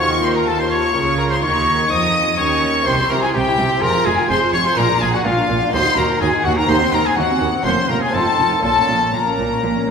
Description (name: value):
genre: classical, baroque-style concerto movement with solo episodes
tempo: 125 BPM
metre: 4/4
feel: straight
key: Bb minor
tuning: A4 = 440 Hz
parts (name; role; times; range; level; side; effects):
- clear trumpet; melody; 0.0-9.9 s; F4 to Eb5; -20 LUFS; left 1 dB; none
- rich chamber violin section; melody; 0.0-9.9 s; F5 to Eb6; -22 LUFS; left 4 dB; none
- dark chamber violin section; second line; 0.0-9.9 s; F5 to Eb6; -22 LUFS; left 2 dB; none
- lute; accompaniment; 0.0-9.9 s; Eb2 to Bb4; -26 LUFS; equal; none
- warm studio viola section; accompaniment; 0.0-9.9 s; Bb3 to Ab4; -23 LUFS; right 1 dB; none
- rich chamber cello section; bass; 0.0-9.9 s; Eb2 to F3; -24 LUFS; right 3 dB; none
- rich studio double bass section; bass; 0.0-9.9 s; F1 to F2; -25 LUFS; right 2 dB; none
room: wet concert hall reverb, RT60 2.0 s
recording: recorded in a church or concert hall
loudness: -14 LUFS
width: side -6 dB against mid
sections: 0.0-9.9 A section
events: none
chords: 0.0 F7/Eb; 0.9 Bbm/Db; 2.9 C7; 3.8 Fm; 4.8 Bb7; 5.7 Ebm; 6.7 Cdim/Eb; 7.7 Bbm/F; 8.1 F7; 8.6 Bbm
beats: 0.47 | 0.95 1.42 1.91 2.38 | 2.86 3.34 3.82 4.29 | 4.77 5.25 5.73 6.21 | 6.69 7.17 7.65 8.14 | 8.64 9.13 9.63